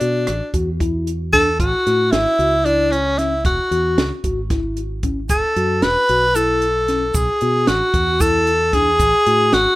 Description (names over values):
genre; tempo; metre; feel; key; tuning
progressive instrumental, band music in an uneven meter; 227 BPM (eighths); 7/8; straight; unclear; A4 = 440 Hz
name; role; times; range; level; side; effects
clear tenor saxophone; melody; 0.0-9.8 s; C#4 to B4; -16 LUFS; equal; none
mellow tine electric piano; arpeggios; 0.0-9.6 s; C#4 to F#4; -24 LUFS; left 2 dB; medium stereo tremolo, tape echo
fingered electric bass; bass; 0.0-9.7 s; E1 to B2; -24 LUFS; equal; none
compact cocktail drum kit; drums; 0.0-9.7 s; hi-hat, kick drum, rim click, snare drum; -22 LUFS; right 1 dB; none
tube shaker; percussion; 5.3-9.2 s; none; -30 LUFS; right 5 dB; none
room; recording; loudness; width
studio reverb; rough home demo mix; -15 LUFS; side -18 dB against mid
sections
0.0-9.8 A section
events
none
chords
0.0 Bm; 1.6 A; 3.5 E; 5.3 F#m7; 7.2 B7(no3); 9.0 Amaj7(no3)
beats
0.01 0.28 0.54 0.81 1.07 1.34 | 1.60 1.86 2.13 2.39 2.66 2.92 3.19 | 3.45 3.71 3.98 4.24 4.51 4.77 5.04 | 5.30 5.57 5.83 6.09 6.36 6.62 6.89 | 7.15 7.42 7.68 7.95 8.21 8.47 8.74 | 9.00 9.27 9.53